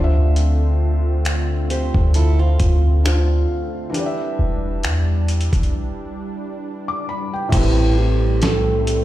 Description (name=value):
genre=contemporary R&B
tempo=67 BPM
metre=4/4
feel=swing 54% on 16ths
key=A minor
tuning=A4 = 440 Hz
part: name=felt-muted upright piano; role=accompaniment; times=0.0-9.0 s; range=A2 to D6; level=-25 LUFS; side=left 1 dB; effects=none
part: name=warm analog pad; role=sustained chords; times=0.0-9.0 s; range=D3 to F4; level=-28 LUFS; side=equal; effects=chorus
part: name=clean 808-style bass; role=bass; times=0.0-9.0 s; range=E1 to E2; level=-17 LUFS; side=equal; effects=none
part: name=dusty soul sampler-style drum kit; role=drums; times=0.4-9.0 s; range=crash cymbal, finger snaps, hi-hat, kick drum, snare drum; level=-22 LUFS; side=equal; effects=overdrive
part: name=fingerpicked steel-string acoustic guitar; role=arpeggios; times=1.7-3.7 s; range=C4 to C5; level=-28 LUFS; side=right 5 dB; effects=digital delay
part: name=hollow clarinet-like synth lead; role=melody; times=7.5-9.0 s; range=E4 to A4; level=-22 LUFS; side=right 4 dB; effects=chorus, digital delay
room=digital ambience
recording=played on a big sound system in a bare room, stone room reverb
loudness=-16 LUFS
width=side -14 dB against mid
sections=0.0-7.5 A section; 7.5-9.0 B section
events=break 5.7-7.5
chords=0.0 Dm9; 3.9 Em7; 7.5 Am7